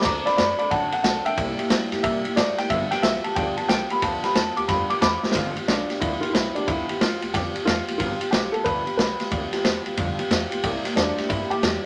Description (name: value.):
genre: rockabilly.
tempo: 181 BPM.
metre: 4/4.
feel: swing 64% on 8ths.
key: G mixolydian.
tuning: A4 = 439 Hz.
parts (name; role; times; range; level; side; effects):
warm upright piano; melody; 0.0-11.8 s; D4 to D6; -28 LUFS; equal; none.
picked steel-string acoustic guitar; accompaniment; 0.0-11.8 s; G2 to A4; -31 LUFS; equal; none.
vintage drum kit; drums; 0.0-11.7 s; crash cymbal, kick drum, ride cymbal, snare drum; -27 LUFS; equal; none.
upright bass; bass; 0.1-11.8 s; G1 to Bb2; -36 LUFS; equal; none.
room: moderate studio reverb, RT60 0.6 s.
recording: none.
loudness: -23 LUFS.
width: mono.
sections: 0.0-5.3 A section; 5.3-11.9 B section.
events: upright piano solo 0.0-5.3; drum fill 5.2.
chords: 0.1 D7; 1.4 C7; 2.7 G7; 10.6 C7.